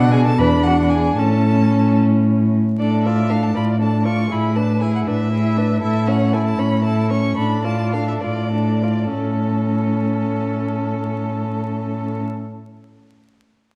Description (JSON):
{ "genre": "quick classical-period movement for string quartet", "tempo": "64-80 BPM (dotted quarters)", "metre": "6/8", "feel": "straight", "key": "A major", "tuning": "A4 = 440 Hz", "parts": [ { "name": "rich violin", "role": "melody", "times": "0.0-12.2 s", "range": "A4 to C#6", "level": "-31 LUFS", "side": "equal", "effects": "none" }, { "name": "rich viola", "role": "accompaniment", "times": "0.0-12.3 s", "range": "C#4 to F4", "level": "-25 LUFS", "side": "equal", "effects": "none" }, { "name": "rich cello", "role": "bass", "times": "0.0-12.2 s", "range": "E2 to B2", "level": "-20 LUFS", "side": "equal", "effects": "none" }, { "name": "rich violin", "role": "second line", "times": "0.1-12.2 s", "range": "F#4 to D5", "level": "-30 LUFS", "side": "equal", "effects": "none" } ], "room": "wet recital hall reverb, RT60 1.5 s", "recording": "dark, warm production, vinyl crackle", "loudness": "-19 LUFS", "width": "mono", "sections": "0.0-2.8 A section; 2.8-9.1 B section; 9.1-12.8 C section", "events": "slowing down 5.1-9.1", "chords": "0.4 E9; 1.2 A; 2.8 Dm/A; 4.3 E7/A; 5.8 A; 7.4 Dm/A; 9.1 A" }